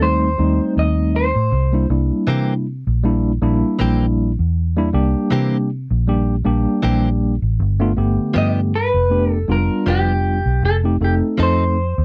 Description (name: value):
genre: blues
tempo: 79 BPM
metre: 4/4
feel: swing 56% on 16ths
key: unclear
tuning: A4 = 440 Hz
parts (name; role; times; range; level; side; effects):
- electric guitar through a small old amp; melody; 0.0-1.9, 8.4-12.0 s; G4 to Eb5; -23 LUFS; equal; warbly pitch drift
- tine electric piano; accompaniment; 0.0-11.8 s; D3 to A4; -22 LUFS; equal; medium tremolo
- vintage muted fingered electric bass; bass; 0.0-12.0 s; F1 to C3; -20 LUFS; equal; none
- direct-recorded clean electric guitar; stabs; 2.3-11.6 s; E3 to A4; -25 LUFS; equal; none
room: light reverb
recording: dry, close 1970s-style studio recording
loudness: -18 LUFS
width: mono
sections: 0.0-12.0 A section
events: none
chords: 0.0 F7 (rootless); 1.5 C7; 7.6 G7; 10.6 F7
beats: 0.01 0.77 | 1.53 2.29 3.04 3.80 | 4.56 5.32 6.08 6.84 | 7.59 8.35 9.11 9.87 | 10.63 11.39